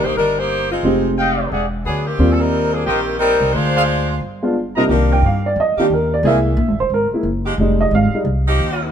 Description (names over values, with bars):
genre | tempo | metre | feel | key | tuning
jazz | 178 BPM | 4/4 | swing 63% on 8ths | Eb major, C minor from 4.9 s | A4 = 441 Hz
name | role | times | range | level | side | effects
bright saxophone section | melody | 0.0-4.2 s | Eb3 to C5 | -18 LUFS | left 1 dB | none
warm upright piano | accompaniment | 0.0-8.3 s | C3 to G5 | -18 LUFS | right 1 dB | none
upright bass | bass | 0.0-8.9 s | E1 to G2 | -19 LUFS | equal | none
mellow trumpet section | stabs | 1.2-4.8 s | G#4 to Bb5 | -21 LUFS | equal | none
edgy saxophone section | sustained chords | 4.9-8.9 s | Eb3 to G#4 | -24 LUFS | equal | none
room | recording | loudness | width
light reverb | minimal, uncompressed stereo recording | -14 LUFS | side -8 dB against mid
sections
0.0-4.9 A section; 4.9-8.9 B section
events
upright piano solo 4.9-8.9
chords
0.0 Cm9; 0.8 Fm9; 1.5 E9; 2.2 Eb6; 3.5 Dm7b5; 4.2 G7b9; 4.9 Cm7; 6.2 C7b13; 7.6 Fm9